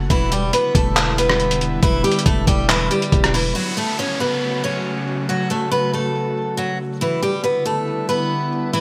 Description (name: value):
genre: hip hop, trap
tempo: 139 BPM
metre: 4/4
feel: half-time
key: F# phrygian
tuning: A4 = 440 Hz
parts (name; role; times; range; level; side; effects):
- airy breathy pad; sustained chords; 0.0-8.8 s; C#3 to F#4; -28 LUFS; equal; chorus
- distorted 808-style bass; bass; 0.0-3.5 s; E1; -24 LUFS; equal; distortion
- picked steel-string acoustic guitar; melody; 0.1-8.8 s; E3 to C#5; -22 LUFS; equal; delay
- boom bap sampler-style drum kit; drums; 0.1-3.4 s; handclaps, hi-hat, kick drum, rim click; -21 LUFS; equal; overdrive, gated reverb
- downlifter; sound effects; 3.6-7.0 s; none; -32 LUFS; equal; none
room: light reverb, digital ambience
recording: bright 1980s-style digital production, vinyl crackle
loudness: -19 LUFS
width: mono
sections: 0.0-3.6 A section; 3.6-8.8 B section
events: none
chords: 0.1 Em7; 3.6 F#m; 7.0 Em7